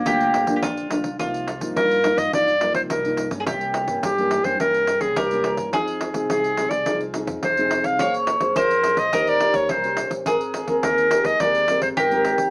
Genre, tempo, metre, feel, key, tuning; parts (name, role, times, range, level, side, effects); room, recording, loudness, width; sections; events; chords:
samba and choro; 106 BPM; 4/4; straight; C minor; A4 = 444 Hz
clear clarinet; melody; 0.0-12.4 s; Bb3 to F5; -19 LUFS; equal
mandolin; second line; 0.0-12.5 s; F4 to Db5; -25 LUFS; equal
nylon-string guitar; accompaniment; 0.0-12.5 s; G2 to C5; -26 LUFS; equal
upright bass; bass; 0.0-12.5 s; Ab1 to G2; -37 LUFS; equal
pandeiro; percussion; 0.1-12.5 s; -28 LUFS; equal
wet studio reverb, RT60 0.5 s; small speaker sound; -18 LUFS; side -30 dB against mid
0.0-1.2 A section; 1.2-12.5 B section
0.0 Gm7; 1.2 Cm7; 3.5 C7b9; 5.7 Fm7; 8.0 Bbm9; 9.1 Eb6; 10.3 Abmaj9